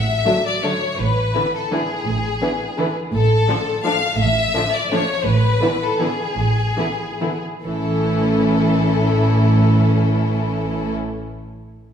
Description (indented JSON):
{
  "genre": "classical",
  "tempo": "133-182 BPM",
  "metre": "3/4",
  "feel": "rubato",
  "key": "A major",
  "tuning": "A4 = 440 Hz",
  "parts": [
    { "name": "clear chamber violin section", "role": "melody", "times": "0.0-10.9 s", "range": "G#4 to F5", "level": "-22 LUFS", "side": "left 3 dB", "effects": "none" },
    { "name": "clear studio double bass section", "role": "bass", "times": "0.0-11.0 s", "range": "A1", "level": "-23 LUFS", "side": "right 2 dB", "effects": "none" },
    { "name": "rich symphonic cello section", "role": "bass", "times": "0.0-11.0 s", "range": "A2", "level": "-21 LUFS", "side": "right 2 dB", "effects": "none" },
    { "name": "warm chamber violin section", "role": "second line", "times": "0.3-11.0 s", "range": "A3 to E4", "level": "-25 LUFS", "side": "left 3 dB", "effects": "none" },
    { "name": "rich chamber viola section", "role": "accompaniment", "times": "0.3-11.0 s", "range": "D3 to F#3", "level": "-24 LUFS", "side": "right 1 dB", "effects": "none" }
  ],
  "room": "wet recital hall reverb, RT60 1.7 s",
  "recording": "heard from further back in the room",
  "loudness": "-16 LUFS",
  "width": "side -8 dB against mid",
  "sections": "0.0-7.6 A section; 7.6-10.2 B section",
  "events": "slowing down 4.7-7.6",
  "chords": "0.0 D/A; 1.0 E7/A; 3.1 Dm/A; 5.3 E7/A; 7.6 A"
}